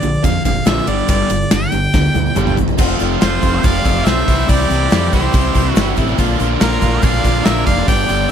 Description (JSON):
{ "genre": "classic rock", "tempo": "141 BPM", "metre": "4/4", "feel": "straight", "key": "unclear", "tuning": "A4 = 439 Hz", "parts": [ { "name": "clear harmonica", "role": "melody", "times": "0.0-8.3 s", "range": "Bb4 to G5", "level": "-21 LUFS", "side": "equal", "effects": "slapback echo" }, { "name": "tonewheel organ", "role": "sustained chords", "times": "0.0-8.3 s", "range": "Bb3 to E5", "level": "-29 LUFS", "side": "left 1 dB", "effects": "none" }, { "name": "distorted electric guitar", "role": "riff", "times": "0.0-8.3 s", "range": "F2 to G4", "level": "-21 LUFS", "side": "right 16 dB", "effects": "overdrive" }, { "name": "overdriven semi-hollow guitar", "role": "riff", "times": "0.0-8.3 s", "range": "F2 to G4", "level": "-21 LUFS", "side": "left 15 dB", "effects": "none" }, { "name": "growling fingered electric bass", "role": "bass", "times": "0.0-8.3 s", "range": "F1 to F2", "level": "-19 LUFS", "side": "equal", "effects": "overdrive" }, { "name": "gated 80s drum kit", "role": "drums", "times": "0.0-8.2 s", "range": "crash cymbal, hi-hat, kick drum, ride cymbal, snare drum, toms", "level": "-17 LUFS", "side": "equal", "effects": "none" }, { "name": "tube shaker", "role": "percussion", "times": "0.0-8.2 s", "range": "none", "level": "-37 LUFS", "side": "left 24 dB", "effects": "none" }, { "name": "biting lead guitar", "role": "second line", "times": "3.2-8.3 s", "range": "F4 to D5", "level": "-24 LUFS", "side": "right 5 dB", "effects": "overdrive" } ], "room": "little or no reverb", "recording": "none", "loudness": "-12 LUFS", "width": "side -8 dB against mid", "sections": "0.0-2.8 A section; 2.8-8.3 B section", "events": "drum fill 1.9-2.8", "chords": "0.0 Bb; 0.9 G6; 2.8 F6; 4.3 C; 6.2 Bb" }